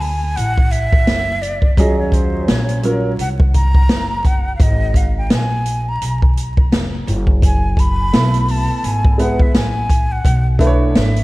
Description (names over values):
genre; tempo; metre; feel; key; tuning
hip hop, jazz-hop; 85 BPM; 4/4; swing 58% on 16ths; unclear; A4 = 444 Hz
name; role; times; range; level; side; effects
breathy concert flute; melody; 0.0-11.2 s; B#4 to B5; -22 LUFS; equal; analog delay
upright bass; bass; 0.0-11.2 s; E#1 to D#2; -19 LUFS; equal; none
open jazz drum kit; drums; 0.0-11.2 s; hi-hat, kick drum, snare drum; -15 LUFS; equal; none
dark grand piano; accompaniment; 1.8-3.1, 8.1-11.2 s; F#3 to C#5; -19 LUFS; right 1 dB; analog chorus
room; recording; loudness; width
light reverb; vinyl crackle; -13 LUFS; side -20 dB against mid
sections
0.0-11.2 A section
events
flute solo 0.0-11.2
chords
0.0 Bm11 (rootless); 1.8 D#m11; 4.6 G#madd9; 7.1 F#m11; 10.3 Bm11